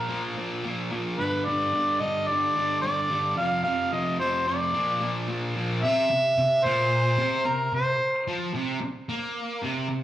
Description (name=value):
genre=rock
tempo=110 BPM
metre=4/4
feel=straight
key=unclear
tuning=A4 = 442 Hz
part: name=mellow harmonica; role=melody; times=0.0-8.2 s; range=Bb4 to F5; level=-24 LUFS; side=equal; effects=overdrive, slapback echo
part: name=fuzz guitar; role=riff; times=0.0-10.0 s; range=F2 to Bb3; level=-28 LUFS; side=equal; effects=distortion, slapback echo
room=moderate plate reverb, RT60 3.1 s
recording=live gig heard through the venue's PA, club reverb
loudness=-23 LUFS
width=side -13 dB against mid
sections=0.0-5.8 A section; 5.8-10.0 B section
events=none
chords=0.0 Bb5; 1.2 G5; 3.4 F5; 4.7 Bb; 5.8 N.C.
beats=0.36 0.91 | 1.46 2.00 2.55 3.10 | 3.64 4.19 4.74 5.28 | 5.82 6.37 6.91 7.46 | 8.00 8.54 9.08 9.63